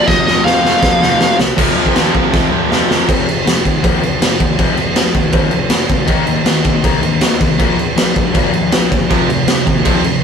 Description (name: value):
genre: punk rock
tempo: 160 BPM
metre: 4/4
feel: straight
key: unclear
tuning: A4 = 442 Hz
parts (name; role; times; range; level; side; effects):
- high-gain lead guitar; melody; 0.0-1.4 s; Eb5 to F5; -13 LUFS; left 2 dB; distortion
- crunchy overdriven guitar; riff; 0.0-10.2 s; F2 to Eb4; -18 LUFS; left 7 dB; none
- distorted electric guitar; riff; 0.0-3.1, 9.1-10.2 s; F2 to F3; -17 LUFS; right 7 dB; overdrive
- fuzz picked electric bass; bass; 0.1-10.2 s; F1 to C3; -23 LUFS; right 1 dB; overdrive
- raw garage drum kit; drums; 0.1-10.1 s; crash cymbal, kick drum, snare drum; -13 LUFS; right 1 dB; none
room: light reverb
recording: rough rehearsal-room recording, warm saturation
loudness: -11 LUFS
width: side -7 dB against mid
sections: 0.0-1.6 A section; 1.6-3.1 B section; 3.1-10.2 C section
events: drum fill 0.1-1.6, 2.3-3.1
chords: 0.0 F5; 6.1 Eb5; 7.6 Bb5; 9.1 F5